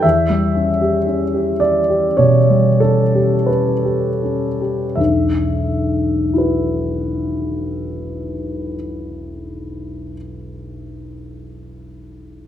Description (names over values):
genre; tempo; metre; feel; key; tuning
classical, impressionist solo piano; 38-59 BPM; 4/4; rubato; E dorian; A4 = 441 Hz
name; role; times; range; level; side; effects
clear grand piano; solo; 0.0-12.5 s; E1 to E5; -16 LUFS; equal; none
room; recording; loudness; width
moderate recital hall reverb, RT60 1.7 s; none; -15 LUFS; side -10 dB against mid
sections
0.0-5.0 A section; 5.0-10.3 B section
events
slowing down 0.0-5.0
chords
0.0 Em6; 5.0 Esus2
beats
| 0.03 1.07 2.19 3.49 | 4.98 6.34 7.68 9.01